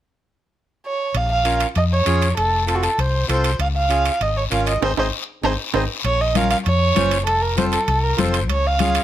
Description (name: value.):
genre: latin, cumbia.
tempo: 196 BPM.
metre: 4/4.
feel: straight.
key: Bb minor.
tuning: A4 = 440 Hz.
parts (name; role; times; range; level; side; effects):
dark erhu; melody; 0.9-9.0 s; Gb4 to F5; -20 LUFS; right 2 dB; none.
hollow-body short-scale fingered electric bass; bass; 1.1-9.0 s; F1 to F2; -21 LUFS; left 1 dB; none.
guiro; percussion; 1.1-9.0 s; none; -30 LUFS; left 7 dB; none.
timbales; percussion; 1.1-9.0 s; none; -27 LUFS; right 10 dB; none.
accordion; accompaniment; 1.4-9.0 s; C4 to C5; -25 LUFS; right 1 dB; none.
congas; percussion; 6.0-9.0 s; none; -24 LUFS; left 6 dB; none.
room: light reverb.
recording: close, detailed microphones.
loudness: -17 LUFS.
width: side -12 dB against mid.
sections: 0.0-1.2 A section; 1.2-6.0 B section; 6.0-9.0 C section.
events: drum fill 4.8-6.0; band accent 4.8-6.0; accordion fill 5.6-6.0.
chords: 0.0 N.C.; 1.2 Bbm; 2.4 F; 3.6 Db; 4.8 Ab; 6.0 Bbm; 7.3 F; 8.5 Db.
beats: 0.23 0.54 0.85 | 1.15 1.46 1.76 2.07 | 2.38 2.68 2.99 3.30 | 3.60 3.91 4.21 4.52 | 4.83 5.13 5.44 5.74 | 6.05 6.35 6.66 6.96 | 7.27 7.58 7.88 8.19 | 8.49 8.80.